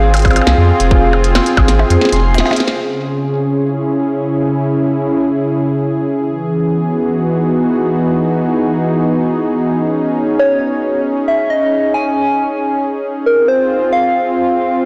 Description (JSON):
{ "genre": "IDM", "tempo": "136 BPM", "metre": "4/4", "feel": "straight", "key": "unclear", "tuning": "A4 = 441 Hz", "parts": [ { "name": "soft struck synth lead", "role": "melody", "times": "0.0-2.2, 10.4-14.9 s", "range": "A#4 to G#5", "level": "-17 LUFS", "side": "equal", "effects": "chorus, tape echo" }, { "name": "warm analog pad", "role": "sustained chords", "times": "0.0-14.9 s", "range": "C#3 to G#4", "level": "-17 LUFS", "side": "equal", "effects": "chorus" }, { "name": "concert harp", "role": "arpeggios", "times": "0.0-5.6 s", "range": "C4 to C6", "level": "-24 LUFS", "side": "equal", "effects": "vintage 12-bit sampler grit, tape echo" }, { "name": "round analog bass", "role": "bass", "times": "0.0-2.4 s", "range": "D#1 to F2", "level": "-15 LUFS", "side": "equal", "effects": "none" }, { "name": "glitchy drum kit", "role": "drums", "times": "0.1-2.7 s", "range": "hi-hat, percussion blips, snare drum", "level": "-20 LUFS", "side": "equal", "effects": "studio reverb, soft clipping on snare, tape echo" }, { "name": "electronic kick drum", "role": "drums", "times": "0.2-1.7 s", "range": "none", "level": "-14 LUFS", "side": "equal", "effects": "studio reverb" } ], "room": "moderate lush hall reverb, RT60 2.1 s", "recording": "blown-out, overdriven recording, overdrive", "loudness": "-14 LUFS", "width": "mono", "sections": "0.0-2.7 A section; 2.7-14.9 B section", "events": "kick drops out 1.8-2.7; drum fill 2.2-2.7; band accent 2.4", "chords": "0.0 Fm; 2.7 C#m; 6.2 Emaj7; 9.7 G#sus4; 13.3 Fm" }